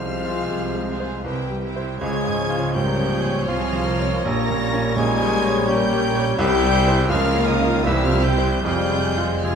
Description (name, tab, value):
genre	classical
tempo	73-86 BPM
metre	3/4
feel	rubato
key	F minor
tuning	A4 = 439 Hz
part	bright baby grand piano	melody	0.0-9.6 s	Bb1 to F5	-24 LUFS	equal	none
part	rich studio violin section	melody	0.0-9.6 s	Eb6 to Bb6	-30 LUFS	right 1 dB	none
part	dark clarinet	second line	0.0-9.6 s	Eb4 to Bb4	-31 LUFS	left 3 dB	none
part	silver concert flute	second line	0.0-9.6 s	Eb5 to Bb5	-30 LUFS	left 2 dB	none
part	warm oboe	second line	0.0-9.6 s	C5 to Ab5	-33 LUFS	right 2 dB	none
part	mellow bassoon	accompaniment	0.0-9.6 s	E3 to Bb3	-29 LUFS	right 2 dB	none
part	dark French horn section	sustained chords	0.0-9.6 s	Eb3 to Bb3	-26 LUFS	left 4 dB	none
part	rich studio double bass section	bass	0.0-9.6 s	F1 to Db2	-27 LUFS	right 2 dB	none
part	warm studio cello section	bass	0.0-9.6 s	F2 to Db3	-29 LUFS	right 4 dB	none
part	warm studio violin section	second line	0.1-9.6 s	F4 to G5	-30 LUFS	left 1 dB	none
part	rich studio viola section	accompaniment	0.1-9.6 s	F3 to F4	-30 LUFS	right 1 dB	none
room	light reverb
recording	close, detailed microphones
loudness	-18 LUFS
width	side -7 dB against mid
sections	0.0-9.6 A section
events	none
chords	0.0 Fm/C; 1.3 C; 2.0 Db; 4.3 Gdim/Bb; 6.4 C; 7.1 Bbm/Db; 7.8 C; 8.6 Fm